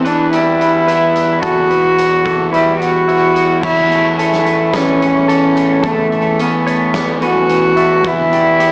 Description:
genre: post-rock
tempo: 109 BPM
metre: 4/4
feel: straight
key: unclear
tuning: A4 = 440 Hz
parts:
  - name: clear cello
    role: melody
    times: 0.0-8.7 s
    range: A3 to F#4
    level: -15 LUFS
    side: equal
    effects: analog delay
  - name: electric guitar at the edge of break-up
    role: arpeggios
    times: 0.0-8.7 s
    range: E2 to E4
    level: -22 LUFS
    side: equal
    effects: lush chorus, analog delay
  - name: twelve-string electric guitar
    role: arpeggios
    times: 0.0-8.7 s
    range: E4 to E5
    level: -25 LUFS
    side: equal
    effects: analog delay
  - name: fuzz picked electric bass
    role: bass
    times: 0.0-8.7 s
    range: E2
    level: -23 LUFS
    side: equal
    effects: overdrive
  - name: huge arena drum kit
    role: drums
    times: 0.1-8.7 s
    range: crash cymbal, hi-hat, kick drum, snare drum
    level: -28 LUFS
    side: equal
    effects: none
room: wet studio reverb, RT60 0.6 s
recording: cassette tape, small speaker sound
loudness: -13 LUFS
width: mono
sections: 0.0-3.6 A section; 3.6-8.7 B section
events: none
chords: 0.0 Em; 3.6 Aadd9/E; 8.0 Em

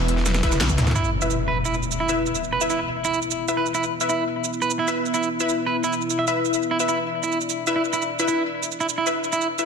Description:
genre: dark technical drum and bass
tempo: 172 BPM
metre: 4/4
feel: straight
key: unclear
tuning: A4 = 440 Hz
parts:
  - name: dark analog pad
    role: sustained chords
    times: 0.0-9.7 s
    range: B3 to E5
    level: -30 LUFS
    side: equal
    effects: chorus, phaser, sidechain pumping
  - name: snarling distorted saw bass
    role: bass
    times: 0.0-0.9 s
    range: E1 to D2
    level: -22 LUFS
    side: equal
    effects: distortion, tube saturation
  - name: breakbeat sampler-style drum kit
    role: drums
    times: 0.1-1.0 s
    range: hi-hat, snare drum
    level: -30 LUFS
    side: equal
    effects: high-pass filter on hats, studio reverb, high-pass filter on snare
  - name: drum and bass drum kit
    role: drums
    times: 0.1-9.7 s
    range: hi-hat, shaker, snare drum, toms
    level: -27 LUFS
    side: right 3 dB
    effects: studio reverb
  - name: orchestra-hit-like synth stab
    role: stabs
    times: 0.4-9.7 s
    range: E4 to E5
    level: -26 LUFS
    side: left 3 dB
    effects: built-in reverb, ping-pong delay
  - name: electronic kick drum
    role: drums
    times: 0.4-0.8 s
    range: none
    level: -24 LUFS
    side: equal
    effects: studio reverb
  - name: clean electric guitar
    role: arpeggios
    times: 1.0-9.5 s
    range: E4 to E5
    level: -25 LUFS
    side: right 2 dB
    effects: sidechain pumping, ping-pong delay
  - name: impact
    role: sound effects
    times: 1.0-2.4 s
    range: none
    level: -29 LUFS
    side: left 1 dB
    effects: none
room: wet plate reverb, RT60 2.3 s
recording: dense, heavily limited modern master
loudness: -20 LUFS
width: side -6 dB against mid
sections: 1.0-9.7 A section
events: drum fill 0.3-1.0; impact 1.0-2.4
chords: 0.0 E5

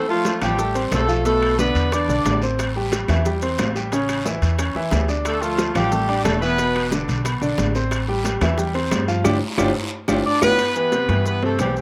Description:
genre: latin, salsa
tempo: 180 BPM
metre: 4/4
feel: straight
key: C major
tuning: A4 = 439 Hz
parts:
  - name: bright horn section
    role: melody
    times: 0.0-2.4, 5.3-6.9, 10.3-11.8 s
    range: F3 to D5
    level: -23 LUFS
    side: equal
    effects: none
  - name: bright concert grand piano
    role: accompaniment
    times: 0.1-11.8 s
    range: B2 to D6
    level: -26 LUFS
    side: equal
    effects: none
  - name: congas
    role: percussion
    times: 0.1-11.8 s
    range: none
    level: -31 LUFS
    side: equal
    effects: none
  - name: guiro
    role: percussion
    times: 0.2-10.5 s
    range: none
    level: -37 LUFS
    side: equal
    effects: none
  - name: bongos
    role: percussion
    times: 0.3-11.8 s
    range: none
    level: -29 LUFS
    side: equal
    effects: none
  - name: maracas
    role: percussion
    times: 0.3-11.8 s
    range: none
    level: -38 LUFS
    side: equal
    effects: none
  - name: timbales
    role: percussion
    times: 0.3-11.8 s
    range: none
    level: -32 LUFS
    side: equal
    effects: slapback echo
  - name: upright bass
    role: bass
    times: 0.4-11.8 s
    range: E1 to G2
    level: -26 LUFS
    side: equal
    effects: none
  - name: claves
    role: percussion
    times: 0.4-11.8 s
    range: none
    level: -37 LUFS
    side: equal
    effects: none
room: little or no reverb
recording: recorded outdoors, with no room sound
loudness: -20 LUFS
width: mono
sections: 0.0-10.6 A section; 10.6-11.8 B section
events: band accent 9.3-10.6; drum fill 9.6-10.6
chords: 0.0 Fadd9; 1.3 Bm7; 1.9 E5; 2.6 Am7; 3.9 A; 5.3 Dmadd9; 6.6 E5; 7.9 Am7; 9.3 G7; 10.6 Cmaj7

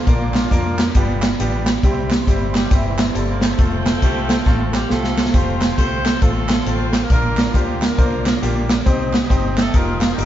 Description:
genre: uptempo gospel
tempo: 137 BPM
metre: 4/4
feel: swing 63% on 8ths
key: Bb major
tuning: A4 = 441 Hz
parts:
  - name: warm horn section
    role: melody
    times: 0.0-10.3 s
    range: E3 to C5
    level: -25 LUFS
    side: left 1 dB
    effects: none
  - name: mellow tonewheel organ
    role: sustained chords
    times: 0.0-10.3 s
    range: G4 to Eb6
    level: -32 LUFS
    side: right 1 dB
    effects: fast rotary speaker, chorus vibrato
  - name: clear grand piano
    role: accompaniment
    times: 0.1-10.3 s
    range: G2 to C5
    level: -25 LUFS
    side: left 1 dB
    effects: none
  - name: vintage muted fingered electric bass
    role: bass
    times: 0.1-10.3 s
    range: F1 to F2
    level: -23 LUFS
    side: equal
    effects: none
  - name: swinging big-band drum kit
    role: drums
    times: 0.1-10.3 s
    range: hi-hat, kick drum, snare drum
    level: -17 LUFS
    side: equal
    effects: none
  - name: group handclap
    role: percussion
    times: 0.3-10.1 s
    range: none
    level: -30 LUFS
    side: right 2 dB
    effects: none
room: light reverb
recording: band playing live in one room, nothing above 7.6 kHz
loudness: -15 LUFS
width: side -12 dB against mid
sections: 0.0-10.3 A section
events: drum fill 4.5-5.3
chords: 0.1 Bb; 1.0 G7; 1.8 C; 3.6 F; 7.1 Bb; 8.9 Cm; 9.7 F9sus4

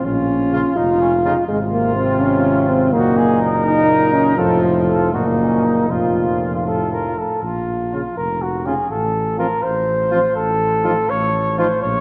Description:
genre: classical, brass quintet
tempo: 82 BPM (dotted quarters)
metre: 6/8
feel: straight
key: Bb minor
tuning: A4 = 440 Hz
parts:
  - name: dark trumpet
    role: melody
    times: 0.0-12.0 s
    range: Db4 to Db5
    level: -23 LUFS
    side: equal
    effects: none
  - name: mellow French horn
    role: accompaniment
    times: 0.0-11.7 s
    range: F3 to F4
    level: -21 LUFS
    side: equal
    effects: none
  - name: dark tuba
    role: bass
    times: 0.0-12.0 s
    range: F1 to Bb1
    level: -26 LUFS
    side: equal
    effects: none
  - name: warm flugelhorn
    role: second line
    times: 0.5-11.7 s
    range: Eb4 to F4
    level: -28 LUFS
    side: equal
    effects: none
  - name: warm trombone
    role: accompaniment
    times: 0.5-11.7 s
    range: A2 to F3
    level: -28 LUFS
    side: equal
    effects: none
room: wet concert hall reverb, RT60 2.5 s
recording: worn, warbling old tape, cassette tape, warbly pitch drift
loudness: -18 LUFS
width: mono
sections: 0.0-7.4 A section; 7.4-12.0 A section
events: none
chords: 0.1 Bbm; 1.5 Fm/Ab; 2.9 Ebm/Gb; 4.4 F; 5.1 Ebm/Gb; 5.9 Bb5/F; 6.7 F; 7.4 Bbm; 8.9 F/A (rootless); 10.4 N.C.

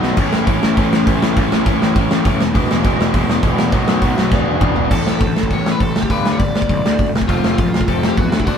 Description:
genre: punk rock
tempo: 203 BPM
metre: 4/4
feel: straight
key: A lydian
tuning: A4 = 442 Hz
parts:
  - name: overdriven semi-hollow guitar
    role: riff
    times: 0.0-8.6 s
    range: G2 to G#4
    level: -21 LUFS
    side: left 5 dB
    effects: none
  - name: raw garage guitar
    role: riff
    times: 0.0-4.9 s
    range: E2 to B3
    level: -21 LUFS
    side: right 4 dB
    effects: overdrive
  - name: fuzz picked electric bass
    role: bass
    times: 0.0-8.6 s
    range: E1 to E2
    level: -22 LUFS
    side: equal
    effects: overdrive
  - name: big rock drum kit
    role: drums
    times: 0.0-8.5 s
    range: crash cymbal, hi-hat, kick drum, snare drum, toms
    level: -16 LUFS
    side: equal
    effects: none
  - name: biting lead guitar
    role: melody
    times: 4.9-8.6 s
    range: E4 to D5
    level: -23 LUFS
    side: equal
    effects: overdrive
room: light reverb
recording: band playing live in one room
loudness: -13 LUFS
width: side -7 dB against mid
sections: 0.0-4.9 A section; 4.9-8.6 B section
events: drum fill 0.0, 4.3-4.9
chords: 0.2 A; 2.4 E; 3.7 B; 4.3 E7; 4.9 A5; 6.0 G5; 7.1 F

